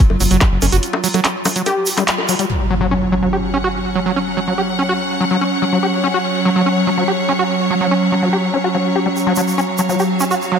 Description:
psychedelic trance; 144 BPM; 4/4; straight; A4 = 440 Hz
evolving wavetable pad; sustained chords; 0.0-10.6 s; F#3 to F#4; -20 LUFS; right 1 dB; chorus, built-in reverb, sidechain pumping
overdriven acid bass; riff; 0.0-10.6 s; F#3 to G4; -19 LUFS; moving between left 6 dB and right 7 dB; distortion, auto-pan, sidechain pumping, tape echo
drum and bass drum kit; drums; 0.0-2.5 s; bongos, handclaps, hi-hat; -20 LUFS; left 1 dB; low-pass filter on hats, low-pass filter on perc, low-pass filter on snare
electronic kick drum; drums; 0.0-0.5 s; -12 LUFS; equal
round analog bass; bass; 0.1-0.8 s; F#1; -16 LUFS; equal
tube shaker; percussion; 0.2-2.5, 9.2-10.5 s; -26 LUFS; right 6 dB
impact; sound effects; 2.5-4.2 s; -24 LUFS; equal
clear studio string section; texture; 2.5-10.6 s; F#3 to F#5; -21 LUFS; left 1 dB; sidechain pumping
moderate lush hall reverb, RT60 2.2 s; -14 LUFS; side -7 dB against mid
0.0-2.5 A section; 2.5-10.6 B section
drop 0.0-2.5; break 0.8-2.5; band accent 2.1; impact 2.5-4.2
0.0 F#5

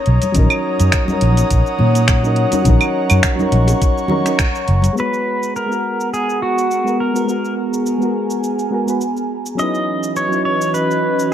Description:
sunset chillout; 104 BPM; 4/4; swing 55% on 16ths; G# minor; A4 = 440 Hz
airy breathy pad; sustained chords; 0.0-11.3 s; E3 to D#6; -21 LUFS; equal; chorus
fretless electric bass; bass; 0.1-4.9 s; F#1 to A#2; -14 LUFS; equal; ensemble chorus
smooth R&B drum kit; drums; 0.1-11.3 s; cabasa, claves, finger snaps, hi-hat; -22 LUFS; right 2 dB
congas and bongos; percussion; 0.2-4.9 s; -24 LUFS; left 2 dB
soft electric-piano-like synth keys; accompaniment; 0.3-11.3 s; F#3 to B4; -21 LUFS; moving between left 4 dB and right 4 dB; chorus, auto-pan, low-pass filter, digital delay
electronic kick drum; drums; 0.4-4.5 s; -16 LUFS; equal
pedal steel guitar; melody; 5.0-11.3 s; F#4 to D#5; -20 LUFS; equal; tape echo
light reverb, digital ambience; dark, warm production; -14 LUFS; side -10 dB against mid
0.0-5.0 A section; 5.0-11.3 B section
band accent 4.4; filter sweep on synth keys 5.0-11.3; filter sweep on analog synth pad 5.0-11.3
0.4 D#m7/A#; 5.0 G#m9; 9.6 C#m11

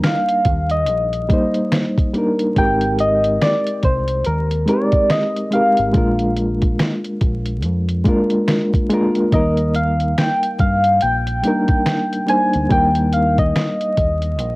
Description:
lo-fi hip hop; 71 BPM; 4/4; swing 60% on 16ths; Eb major; A4 = 440 Hz
soft struck synth lead; melody; 0.0-14.6 s; Bb4 to Ab5; -18 LUFS; equal; chorus, phaser, cassette tape
reed electric piano; accompaniment; 0.0-14.6 s; G3 to C5; -20 LUFS; equal; overdrive, fast tremolo, cassette tape
lo-fi sampler-style drum kit; drums; 0.0-14.6 s; finger snaps, hi-hat, kick drum, snare drum; -19 LUFS; equal; cassette tape
deep dub fingered electric bass; bass; 0.5-14.6 s; Ab1 to G2; -21 LUFS; equal
wet studio reverb, RT60 0.6 s; home recording on cassette, vinyl crackle; -15 LUFS; side -22 dB against mid
0.0-2.6 A section; 2.6-14.6 B section
kick muted 14.4
0.0 Ebmaj7; 2.6 Abmaj9; 5.9 Bb7; 9.3 Ebmaj7

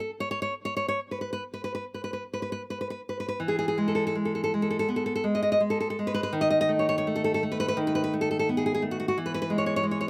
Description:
romantic piece for solo classical guitar; 67-89 BPM; 4/4; rubato; E major; A4 = 441 Hz
nylon-string guitar; solo; 0.0-10.1 s; D#3 to D#5; -28 LUFS; equal
light reverb; recorded outdoors, with no room sound; -28 LUFS; mono
0.0-3.4 A section; 3.4-10.1 B section
0.0 N.C.; 3.4 E; 6.3 B7/D#; 9.2 E

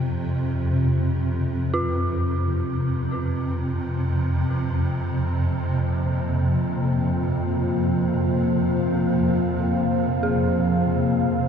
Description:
dark ambient drone; free time; A4 = 440 Hz
swarming drone; drone; 0.0-11.5 s; F2 to C3; -23 LUFS; equal; built-in reverb
bronze singing bowl; texture; 0.0-11.5 s; F4; -42 LUFS; left 5 dB
dark detuned synth bell; arpeggios; 1.7-11.5 s; F4 to Ab4; -31 LUFS; equal; chorus, diffuse ambient delay
deep dark ambient pad; sustained chords; 5.8-11.5 s; F3 to F5; -22 LUFS; left 1 dB; chorus, built-in reverb
wet huge ambient reverb, RT60 9.2 s; in a vast, echoing space; -20 LUFS; side -7 dB against mid
0.0-11.5 A section
0.0 F5; 3.8 Bbsus2/F

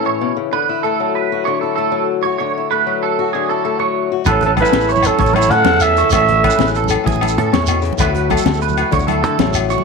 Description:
highlife guitar band; 129 BPM (dotted quarters); 12/8; straight; A4 = 439 Hz
fingerpicked swing-style acoustic guitar; accompaniment; 0.0-9.8 s; A2 to A4; -20 LUFS; left 13 dB
clean electric guitar; arpeggios; 0.0-9.8 s; G#4 to C#5; -20 LUFS; right 12 dB; ensemble chorus, slapback echo
growling trumpet; melody; 4.3-6.7 s; A4 to F#5; -14 LUFS; right 2 dB
growling alto saxophone; second line; 4.3-6.7 s; C#4 to A4; -20 LUFS; right 13 dB; slapback echo
fingered electric bass; bass; 4.3-9.7 s; A1 to D3; -20 LUFS; equal
crunchy breakbeat drum kit; drums; 4.3-9.8 s; hi-hat, kick drum, snare drum; -21 LUFS; left 6 dB
agogo bells; percussion; 4.3-9.7 s; -24 LUFS; left 13 dB
congas; percussion; 4.3-9.8 s; -24 LUFS; right 11 dB
shekere; percussion; 4.3-9.7 s; -24 LUFS; right 4 dB
light reverb, studio reverb; 1960s-style stereo with parts hard left and right; -13 LUFS; side -4 dB against mid
0.0-9.8 A section
0.0 A; 0.5 Dadd9; 4.3 A; 8.0 Dadd9

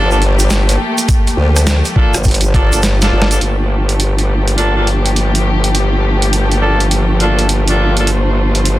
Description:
glitch hop; 103 BPM; 4/4; swing 64% on 16ths; G minor; A4 = 440 Hz
dark studio string section; sustained chords; 0.0-8.8 s; F3 to C5; -19 LUFS; left 1 dB; sidechain pumping
bright horn section; stabs; 0.0-8.1 s; Bb3 to A4; -19 LUFS; equal; vintage 12-bit sampler grit, sidechain pumping, tape echo
formant-sweep wobble bass; bass; 0.0-8.8 s; G1 to D2; -13 LUFS; equal; chorus, tube saturation
tube shaker; percussion; 0.1-3.4 s; -24 LUFS; right 4 dB
boom bap sampler-style drum kit; drums; 0.2-8.8 s; hi-hat, rim click, snare drum; -18 LUFS; right 2 dB
electronic kick drum; drums; 1.1-2.7 s; -12 LUFS; equal
light reverb, small room ambience; dense, heavily limited modern master; -11 LUFS; side -15 dB against mid
0.0-3.4 A section; 3.4-8.8 B section
drum fill 2.8-3.4
0.0 Gm9

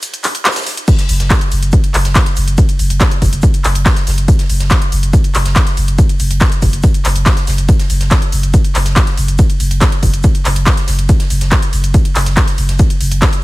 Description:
driving peak-time techno; 141 BPM; 4/4; straight; A4 = 436 Hz
big rock drum kit; drums; 0.0-13.3 s; hi-hat, shaker, snare drum; -28 LUFS; right 1 dB; sidechain pumping on hats, high-pass filter on hats, high-pass filter on snare, sidechain pumping on perc, high-pass filter on perc, high-pass filter on room
techno drum kit; drums; 0.0-13.4 s; crash cymbal, handclaps, hi-hat, ride cymbal; -18 LUFS; equal; sidechain pumping on hats, sidechain pumping on cymbals
electronic kick drum; drums; 0.9-13.3 s; -12 LUFS; equal
saturated sub bass; bass; 1.1-13.2 s; F#1; -14 LUFS; equal; overdrive, sidechain pumping, low-pass filter
little or no reverb; -10 LUFS; side -19 dB against mid
0.0-13.4 A section
break 0.0-0.9

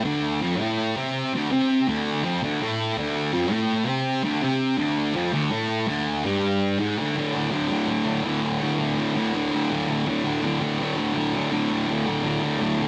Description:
rock; 165 BPM; 4/4; straight; A4 = 443 Hz
thick fuzz guitar; solo; 0.0-12.9 s; D2 to C4; -24 LUFS; equal; distortion
moderate stone room reverb, RT60 1.2 s; band playing live in one room; -24 LUFS; mono
0.0-7.1 A section; 7.1-12.9 B section
0.0 D5

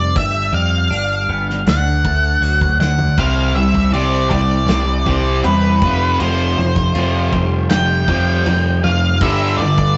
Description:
quiet-loud alternative rock; 80 BPM; 4/4; straight; A4 = 441 Hz
octave-fuzz lead guitar; melody; 0.0-10.0 s; B4 to G5; -22 LUFS; equal; distortion
twelve-string electric guitar; arpeggios; 0.0-9.2 s; G2 to F4; -27 LUFS; equal; phaser
overdriven picked electric bass; bass; 0.0-9.9 s; F1 to F2; -21 LUFS; equal
loose indie drum kit; drums; 0.2-10.0 s; crash cymbal, hi-hat, kick drum, snare drum, toms; -24 LUFS; equal
thick fuzz guitar; riff; 3.2-9.9 s; F2 to C4; -20 LUFS; equal; distortion
tight distorted guitar; riff; 9.2-9.9 s; G2 to G3; -22 LUFS; equal; distortion
moderate stone room reverb, RT60 1.1 s; rough rehearsal-room recording, nothing above 7.9 kHz; -16 LUFS; mono
0.0-3.2 A section; 3.2-10.0 B section
drum fill 2.8-3.2
0.2 G; 1.7 D; 3.2 Csus2; 5.8 Fsus2; 9.2 G5

